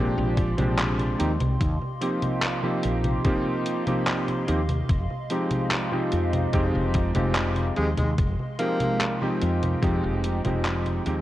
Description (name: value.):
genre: vaporwave.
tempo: 73 BPM.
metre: 4/4.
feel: straight.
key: F dorian.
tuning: A4 = 439 Hz.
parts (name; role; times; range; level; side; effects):
warm electric grand piano; accompaniment; 0.0-11.2 s; F3 to G4; -27 LUFS; right 1 dB; analog chorus, analog delay.
warbly tape-like pad; sustained chords; 0.0-11.2 s; Ab3 to C6; -34 LUFS; equal; chorus, built-in reverb, phaser, vintage 12-bit sampler grit.
woody fretless electric bass; bass; 0.0-11.2 s; F1 to Bb2; -26 LUFS; equal; tube saturation, analog chorus.
detuned 8-bit digital drum machine; drums; 0.2-11.2 s; congas, handclaps, hi-hat; -29 LUFS; equal; overdrive.
electronic kick drum; drums; 0.4-10.0 s; none; -25 LUFS; equal; overdrive.
breathy tenor saxophone; melody; 7.8-9.2 s; Ab3 to Bb3; -31 LUFS; left 1 dB; tape echo.
room: light reverb, digital ambience.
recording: cassette tape.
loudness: -22 LUFS.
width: side -14 dB against mid.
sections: 0.0-11.2 A section.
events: fade-out 9.3-11.2.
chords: 0.0 Bb13; 1.2 Eb69; 4.9 Fm7.